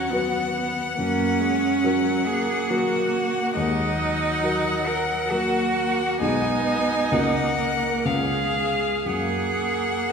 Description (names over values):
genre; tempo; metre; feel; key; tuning
classical, slow romantic movement for piano quartet; 58-70 BPM; 3/4; rubato; F# major; A4 = 440 Hz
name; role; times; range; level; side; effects
rich violin; melody; 0.0-10.1 s; E#5 to G#5; -27 LUFS; left 4 dB; none
rich cello; second line; 0.0-10.1 s; C#4 to A#4; -24 LUFS; right 3 dB; none
dark grand piano; accompaniment; 0.0-10.1 s; B1 to B4; -27 LUFS; left 2 dB; none
warm viola; accompaniment; 0.0-10.1 s; F#3 to C#4; -29 LUFS; right 1 dB; none
room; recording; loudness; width
wet concert hall reverb, RT60 1.9 s; recorded in a church or concert hall; -20 LUFS; side -6 dB against mid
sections
0.0-10.1 A section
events
none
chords
0.0 B/D#; 1.0 F#; 3.6 D#m; 6.2 G#m/B; 7.1 F#/C#; 8.1 C#7; 9.1 F#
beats
0.11 | 0.98 1.84 2.70 | 3.56 4.43 5.32 | 6.22 7.12 8.05 | 9.06 10.10